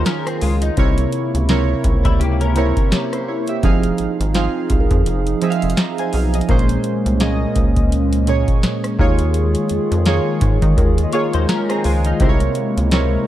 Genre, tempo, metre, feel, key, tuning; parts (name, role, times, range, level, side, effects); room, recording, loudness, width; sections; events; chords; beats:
contemporary R&B; 84 BPM; 4/4; swing 58% on 16ths; Bb minor; A4 = 440 Hz
warm analog keys; accompaniment; 0.0-13.3 s; Bb2 to Bb5; -21 LUFS; right 2 dB; chorus
hollow soft pad; sustained chords; 0.0-13.3 s; C3 to Ab4; -23 LUFS; equal; chorus, sidechain pumping
direct-recorded clean electric guitar; arpeggios; 0.0-3.4, 11.1-12.4 s; G3 to Db5; -26 LUFS; left 5 dB; ensemble chorus, digital delay
rubbery square bass; bass; 0.0-13.2 s; F1 to Eb3; -18 LUFS; equal
booming analog drum machine; drums; 0.1-13.1 s; hi-hat, kick drum, rim click, snare drum; -18 LUFS; equal
soft synth bell; texture; 0.8-12.0 s; Db4 to F5; -32 LUFS; left 2 dB
digital ambience; -15 LUFS; side -13 dB against mid
0.0-13.3 A section
kick muted 5.1-6.5
0.0 Eb9sus4; 0.8 C7b9; 3.6 Fm7; 6.5 Bbm7; 9.0 Eb9sus4; 12.2 C7b9
0.06 | 0.77 1.49 2.20 2.92 | 3.63 4.34 5.06 5.77 | 6.49 7.20 7.92 8.63 | 9.35 10.06 10.77 11.49 | 12.20 12.92